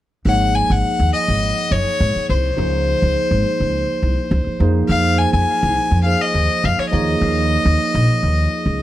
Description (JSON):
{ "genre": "jazz", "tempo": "104 BPM", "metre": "4/4", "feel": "straight", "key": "unclear", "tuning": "A4 = 440 Hz", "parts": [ { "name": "rich violin", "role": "melody", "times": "0.3-8.8 s", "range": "C5 to Ab5", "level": "-19 LUFS", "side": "left 3 dB", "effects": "tape echo" }, { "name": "barky tine electric piano", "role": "accompaniment", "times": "0.3-8.8 s", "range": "F3 to Db5", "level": "-22 LUFS", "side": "right 4 dB", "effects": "overdrive, lush chorus" }, { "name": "upright bass", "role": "bass", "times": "0.3-8.8 s", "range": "Gb1 to F2", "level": "-18 LUFS", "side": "equal", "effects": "none" } ], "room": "little or no reverb", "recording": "dry, close 1970s-style studio recording", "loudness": "-15 LUFS", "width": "side -14 dB against mid", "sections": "0.3-8.8 A section", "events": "none", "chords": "0.3 Ab7sus4; 2.6 Dbmaj9; 4.6 Fm7; 6.9 Eb5" }